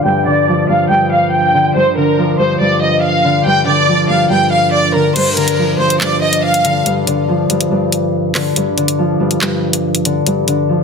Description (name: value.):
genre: hip hop, drill.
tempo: 141 BPM.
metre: 4/4.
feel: half-time.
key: G minor.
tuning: A4 = 439 Hz.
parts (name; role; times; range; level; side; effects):
rich studio violin section; melody; 0.0-6.8 s; Bb4 to G5; -13 LUFS; right 1 dB; low-pass filter, digital delay.
Celtic harp; accompaniment; 0.0-10.8 s; G2 to F3; -14 LUFS; left 1 dB; low-pass filter.
drill drum kit; drums; 5.2-10.6 s; crash cymbal, handclaps, hi-hat, rim click; -18 LUFS; left 1 dB; overdrive.
room: light reverb, small room ambience.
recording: dense, heavily limited modern master.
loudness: -11 LUFS.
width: side -5 dB against mid.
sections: 0.0-5.2 A section; 5.2-10.8 B section.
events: filter sweep 0.0-5.2; break 5.2-10.8.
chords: 0.0 G7(no3).